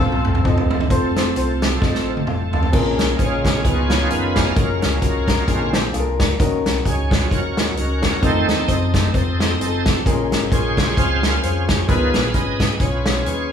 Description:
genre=uptempo gospel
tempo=131 BPM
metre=4/4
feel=swing 56% on 8ths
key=Bb minor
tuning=A4 = 438 Hz
part: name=clear horn section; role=melody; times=0.0-0.7 s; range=C4 to A4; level=-25 LUFS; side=left 4 dB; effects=none
part: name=warm grand piano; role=accompaniment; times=0.0-13.5 s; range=Bb2 to Bb5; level=-23 LUFS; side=left 2 dB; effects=none
part: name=bright tonewheel organ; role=sustained chords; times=0.0-13.5 s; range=Db3 to F5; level=-23 LUFS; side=right 2 dB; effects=slow rotary speaker, chorus vibrato
part: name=fingered electric bass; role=bass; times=0.0-13.5 s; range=F1 to Gb2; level=-23 LUFS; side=equal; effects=none
part: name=natural country drum kit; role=drums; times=0.1-13.4 s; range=crash cymbal, hi-hat, kick drum, snare drum, toms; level=-19 LUFS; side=equal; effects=none
part: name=clean electric guitar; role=second line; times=3.6-4.5 s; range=Db4 to Ab4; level=-30 LUFS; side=right 5 dB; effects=none
room=wet large studio reverb, RT60 0.8 s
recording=band playing live in one room, studio reverb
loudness=-16 LUFS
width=side -8 dB against mid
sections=0.9-2.7 A section; 2.7-13.5 B section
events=drum fill 0.0-0.9, 1.8-2.7; tonewheel organ solo 2.7-13.5; grand piano fill 5.0-6.4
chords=0.0 F; 2.7 Bbm7; 3.7 Db7; 4.6 Gbmaj7; 5.5 Bb7; 6.4 Ebm7; 8.2 F7; 10.1 Bbm7; 11.9 Db7

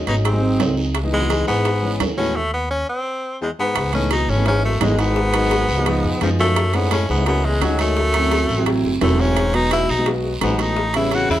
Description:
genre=Afro-Cuban jazz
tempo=171 BPM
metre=4/4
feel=straight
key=C# minor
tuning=A4 = 440 Hz
part: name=warm upright piano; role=accompaniment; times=0.0-11.3 s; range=E3 to A#4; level=-23 LUFS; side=right 1 dB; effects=none
part: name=bright tenor saxophone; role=melody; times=0.1-11.4 s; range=E#3 to F#4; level=-22 LUFS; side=equal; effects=none
part: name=breathy baritone saxophone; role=second line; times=0.1-11.4 s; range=C#2 to C#3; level=-24 LUFS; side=left 4 dB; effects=none
part: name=upright bass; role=bass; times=0.1-11.4 s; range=E1 to F#2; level=-22 LUFS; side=equal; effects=none
part: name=bongos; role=percussion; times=0.1-11.4 s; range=none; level=-28 LUFS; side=left 5 dB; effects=none
part: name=guiro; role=percussion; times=0.1-11.4 s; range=none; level=-33 LUFS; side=right 3 dB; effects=none
part: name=timbales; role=percussion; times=0.1-11.3 s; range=none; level=-26 LUFS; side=right 8 dB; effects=none
room=light reverb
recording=none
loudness=-16 LUFS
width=side -12 dB against mid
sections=0.0-3.8 A section; 3.8-11.4 B section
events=stop 2.4-3.8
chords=0.2 G#7; 1.0 C#m9; 2.4 B9/D#; 3.1 N.C.; 3.8 C#m7; 5.2 G#m7; 5.9 C#7; 6.6 F#m7; 8.0 D9; 9.4 Emaj9; 10.8 A7

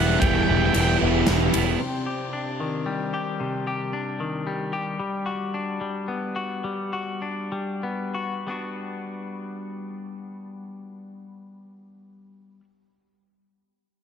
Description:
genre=post-rock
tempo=90-114 BPM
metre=3/4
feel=straight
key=G major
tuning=A4 = 440 Hz
part: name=octave-fuzz lead guitar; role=melody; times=0.0-1.0 s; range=F#5 to G5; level=-28 LUFS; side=right 3 dB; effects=distortion, slapback echo
part: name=pedal steel guitar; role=sustained chords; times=0.0-5.0 s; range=C4 to B5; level=-38 LUFS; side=left 3 dB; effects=wide subtle chorus
part: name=distorted electric guitar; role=riff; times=0.0-1.8 s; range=E3 to E4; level=-26 LUFS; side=left 13 dB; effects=distortion
part: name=distorted electric guitar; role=riff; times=0.0-1.8 s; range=E3 to E4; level=-25 LUFS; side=right 13 dB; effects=distortion
part: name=fuzz picked electric bass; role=bass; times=0.0-1.7 s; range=E1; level=-23 LUFS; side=equal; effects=overdrive
part: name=big rock drum kit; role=drums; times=0.2-1.7 s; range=kick drum, ride cymbal, snare drum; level=-28 LUFS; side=equal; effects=none
part: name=semi-hollow electric guitar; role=arpeggios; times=1.8-12.6 s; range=C3 to G4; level=-29 LUFS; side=left 3 dB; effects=spring reverb, slapback echo
room=light reverb, small room ambience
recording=none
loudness=-24 LUFS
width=side -7 dB against mid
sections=0.0-1.8 A section; 1.8-8.5 B section; 8.5-12.5 C section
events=slowing down 5.0-8.5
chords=0.0 Em7; 1.8 Cmadd9; 5.0 Gmaj7

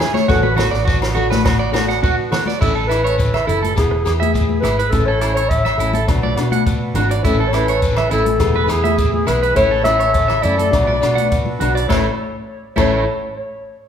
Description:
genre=highlife guitar band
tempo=103 BPM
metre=4/4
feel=straight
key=A major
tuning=A4 = 437 Hz
part: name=flamenco guitar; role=accompaniment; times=0.0-13.0 s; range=E3 to A4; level=-25 LUFS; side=left 4 dB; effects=none
part: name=accordion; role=sustained chords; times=0.0-12.2 s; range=A3 to B4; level=-29 LUFS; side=right 1 dB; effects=none
part: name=electric guitar at the edge of break-up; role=arpeggios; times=0.0-13.0 s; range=E4 to F#5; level=-21 LUFS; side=right 4 dB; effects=spring reverb
part: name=compact cocktail drum kit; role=drums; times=0.0-12.9 s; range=crash cymbal, hi-hat, kick drum, rim click, snare drum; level=-22 LUFS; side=equal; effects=none
part: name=agogo bells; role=percussion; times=0.0-12.9 s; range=none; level=-31 LUFS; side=left 2 dB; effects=none
part: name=congas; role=percussion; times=0.0-13.0 s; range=none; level=-25 LUFS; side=left 6 dB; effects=none
part: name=shekere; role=percussion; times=0.0-13.0 s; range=none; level=-29 LUFS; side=left 2 dB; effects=none
part: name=vintage muted fingered electric bass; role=bass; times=0.3-13.0 s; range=E1 to B2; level=-21 LUFS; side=equal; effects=none
part: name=breathy clarinet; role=melody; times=2.6-13.0 s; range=G#4 to E5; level=-19 LUFS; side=left 2 dB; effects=tape echo
room=wet large studio reverb, RT60 1.5 s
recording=band playing live in one room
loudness=-14 LUFS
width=side -8 dB against mid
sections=0.0-2.6 A section; 2.6-11.9 B section; 11.9-13.9 C section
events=none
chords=0.3 D6/A; 2.6 A; 3.8 E; 4.9 A; 6.1 Bm; 7.2 A; 8.4 E; 9.6 A; 10.7 Bm; 11.9 A

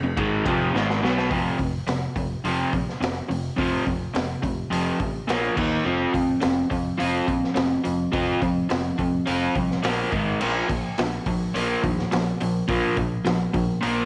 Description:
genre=garage rock duo or trio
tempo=105 BPM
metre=4/4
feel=straight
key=F minor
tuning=A4 = 444 Hz
part: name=crunchy overdriven guitar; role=riff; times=0.0-14.1 s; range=F2 to F4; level=-25 LUFS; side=equal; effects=none
part: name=picked electric bass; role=bass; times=0.0-14.0 s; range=F1 to Eb2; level=-34 LUFS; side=equal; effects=overdrive
part: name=crunchy breakbeat drum kit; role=drums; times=0.2-14.0 s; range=crash cymbal, hi-hat, kick drum, ride cymbal, snare drum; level=-32 LUFS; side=equal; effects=none
room=light reverb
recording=none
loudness=-24 LUFS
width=mono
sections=0.0-1.3 A section; 1.3-14.1 B section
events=drum fill 0.7-1.3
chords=0.0 Fm; 1.3 F5; 5.3 Bb5; 5.6 Eb5; 5.9 F5; 9.8 Bb5; 10.1 Ab5; 10.4 Bb5

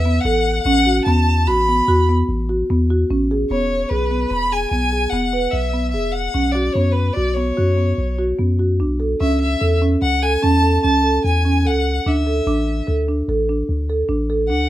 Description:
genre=contemporary instrumental, chamber music in an uneven meter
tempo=147 BPM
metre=7/4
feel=straight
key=unclear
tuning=A4 = 440 Hz
part: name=rich violin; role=melody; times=0.0-14.7 s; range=B4 to B5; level=-21 LUFS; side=left 1 dB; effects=none
part: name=punchy sub bass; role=bass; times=0.0-14.7 s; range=E1 to F#2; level=-20 LUFS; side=equal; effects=none
part: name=marimba with medium mallets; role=arpeggios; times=0.1-14.6 s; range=B3 to B4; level=-20 LUFS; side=right 1 dB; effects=none
room=light reverb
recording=none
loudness=-16 LUFS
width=side -14 dB against mid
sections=0.0-3.5 A section; 3.5-14.7 B section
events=none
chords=0.0 Asus2; 3.5 E; 6.4 Bsus2; 9.2 A/C#; 12.1 Dsus2

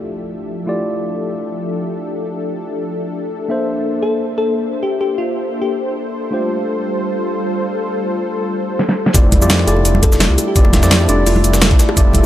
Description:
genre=liquid drum and bass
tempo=170 BPM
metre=4/4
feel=swing 54% on 16ths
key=F major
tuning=A4 = 440 Hz
part: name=mellow tine electric piano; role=accompaniment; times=0.0-12.3 s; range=A3 to E5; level=-21 LUFS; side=equal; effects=low-pass filter, digital delay
part: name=warm analog pad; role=sustained chords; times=0.0-12.3 s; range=F3 to E5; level=-22 LUFS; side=left 1 dB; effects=chorus, sidechain pumping
part: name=bell-like FM electric piano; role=melody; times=4.0-5.9, 9.7-11.4 s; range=D4 to A4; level=-22 LUFS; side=left 2 dB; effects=chorus, tape echo
part: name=pop drum kit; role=drums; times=8.8-12.2 s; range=cabasa, hi-hat, snare drum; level=-17 LUFS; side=equal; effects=low-pass filter on hats, low-pass filter on cymbals, low-pass filter on perc, low-pass filter on snare
part: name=dark detuned saw bass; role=bass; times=9.1-12.2 s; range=F1 to F2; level=-15 LUFS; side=equal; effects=tube saturation
part: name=breakbeat sampler-style drum kit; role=drums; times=9.1-12.2 s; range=hi-hat, snare drum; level=-21 LUFS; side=left 1 dB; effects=high-pass filter on hats, high-pass filter on snare
part: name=electronic kick drum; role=drums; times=9.1-12.2 s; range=none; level=-12 LUFS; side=equal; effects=none
part: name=bongos and congas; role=percussion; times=9.1-12.3 s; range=none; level=-23 LUFS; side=equal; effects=none
room=light reverb, digital ambience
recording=none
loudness=-14 LUFS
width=side -12 dB against mid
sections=0.0-9.1 A section; 9.1-12.3 B section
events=filter sweep on tine electric piano 0.0-9.1; filter sweep on analog synth pad 0.0-9.1; drum fill 8.8-9.1; drop 9.1-12.3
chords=0.0 Fmaj13; 3.5 Bbmaj9#11; 6.3 G9sus4; 9.1 Fmaj13

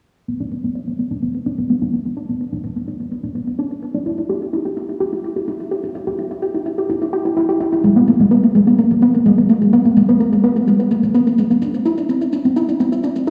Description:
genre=melodic techno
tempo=127 BPM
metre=4/4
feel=straight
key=B phrygian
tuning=A4 = 440 Hz
part: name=tight sequenced synth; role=arpeggios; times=0.3-13.3 s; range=G#3 to G4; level=-17 LUFS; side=equal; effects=chorus, phaser, cassette tape, dub echo
part: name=shaker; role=drums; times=0.3-13.3 s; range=none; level=-53 LUFS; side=equal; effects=overdrive, low-pass filter on perc
room=wet lush hall reverb, RT60 2.0 s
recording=played on a big sound system in a bare room, stone room reverb, small room reverb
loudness=-17 LUFS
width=mono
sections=0.3-13.3 A section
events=filter sweep on drum 0.3-13.3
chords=none

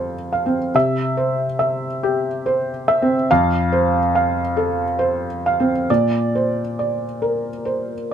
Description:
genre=neoclassical minimalist piano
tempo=69 BPM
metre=3/4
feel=rubato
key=F major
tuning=A4 = 440 Hz
part: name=felt-muted upright piano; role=solo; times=0.0-8.1 s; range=F2 to F5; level=-17 LUFS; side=right 1 dB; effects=none
room=light reverb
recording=close, detailed microphones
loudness=-17 LUFS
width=side -8 dB against mid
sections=0.0-8.1 A section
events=none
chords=0.0 F; 0.7 C; 3.3 F; 5.9 Bbadd9

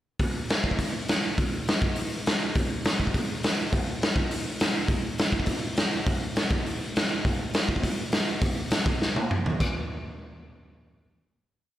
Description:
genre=punk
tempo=204 BPM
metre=4/4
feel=straight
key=none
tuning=none
part: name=raw garage drum kit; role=drums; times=0.2-9.7 s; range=crash cymbal, hi-hat, kick drum, snare drum, toms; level=-24 LUFS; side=equal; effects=none
room=light reverb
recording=none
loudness=-24 LUFS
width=side -13 dB against mid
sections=0.2-9.6 verse; 9.6-10.8 final hit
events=drum fill 9.0-9.6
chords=none

